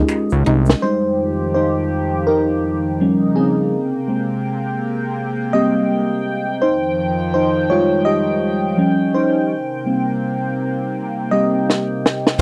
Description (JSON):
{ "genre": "R&B, neo-soul", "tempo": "83 BPM", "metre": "4/4", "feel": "swing 58% on 16ths", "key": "F minor", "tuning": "A4 = 440 Hz", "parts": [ { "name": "archtop guitar, miked and amplified", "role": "second line", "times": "0.0-0.6 s", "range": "Eb4", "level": "-22 LUFS", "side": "equal", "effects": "none" }, { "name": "mellow FM electric piano", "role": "accompaniment", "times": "0.0-12.4 s", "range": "F3 to Eb5", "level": "-20 LUFS", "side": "equal", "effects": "chorus, phaser" }, { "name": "fat analog bass", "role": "bass", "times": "0.0-0.8 s", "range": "C2 to Db2", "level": "-18 LUFS", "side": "equal", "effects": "none" }, { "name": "finger snaps and egg shaker", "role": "percussion", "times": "0.1-0.8, 12.4 s", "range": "none", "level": "-33 LUFS", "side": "equal", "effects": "none" }, { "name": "compact cocktail drum kit", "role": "drums", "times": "0.7-0.8, 11.7-12.4 s", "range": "hi-hat, kick drum, snare drum", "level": "-18 LUFS", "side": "equal", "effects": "none" }, { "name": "chorused pulse-width pad", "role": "sustained chords", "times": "0.8-12.4 s", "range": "F2 to G5", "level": "-25 LUFS", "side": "equal", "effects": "none" } ], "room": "light reverb", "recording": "dry, close 1970s-style studio recording", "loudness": "-18 LUFS", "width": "mono", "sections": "0.8-12.4 A section", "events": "drum fill 0.1-0.8, 11.7-12.4; FM electric piano solo 0.8-12.4", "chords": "0.0 Eb9sus4; 0.8 Fm9; 3.0 Eb7; 3.7 Abmaj9; 6.6 Fm9; 8.8 Eb7; 9.5 Cm7", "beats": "0.10 | 0.82 1.55 2.27 2.99 | 3.72 4.44 5.16 5.88 | 6.61 7.33 8.05 8.78 | 9.50 10.22 10.95 11.67 | 12.39" }